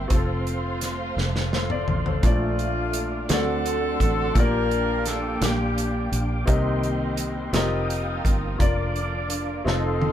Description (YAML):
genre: slow gospel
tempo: 56 BPM (dotted quarters)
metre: 6/8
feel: straight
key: Bb major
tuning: A4 = 439 Hz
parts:
  - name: clear upright piano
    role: accompaniment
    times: 0.0-10.1 s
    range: Bb2 to Eb5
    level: -29 LUFS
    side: left 3 dB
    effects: none
  - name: mellow tonewheel organ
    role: sustained chords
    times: 0.0-10.1 s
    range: A3 to Eb6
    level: -32 LUFS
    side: right 1 dB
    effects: slow rotary speaker, chorus vibrato
  - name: rich studio string section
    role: sustained chords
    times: 0.0-10.1 s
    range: D3 to F4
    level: -35 LUFS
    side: equal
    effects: none
  - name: fingered electric bass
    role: bass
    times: 0.0-10.1 s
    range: F1 to D2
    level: -27 LUFS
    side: equal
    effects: none
  - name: natural country drum kit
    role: drums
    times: 0.1-10.1 s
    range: hi-hat, kick drum, snare drum, toms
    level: -24 LUFS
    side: equal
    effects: none
  - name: warm horn section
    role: melody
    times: 2.2-6.5, 9.7-10.1 s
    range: A3 to Bb4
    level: -27 LUFS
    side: equal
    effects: none
room: light reverb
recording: band playing live in one room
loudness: -21 LUFS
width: side -10 dB against mid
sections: 0.0-10.1 A section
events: drum fill 1.2-2.2, 9.7-10.1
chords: 0.1 F; 2.2 Bbmaj7; 3.3 D7; 4.4 Gm7/Bb; 6.5 Cm7; 7.5 F9sus4; 8.6 Bb/F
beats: | 0.10 1.16 | 2.23 3.29 | 4.35 5.41 | 6.48 7.54 | 8.60 9.66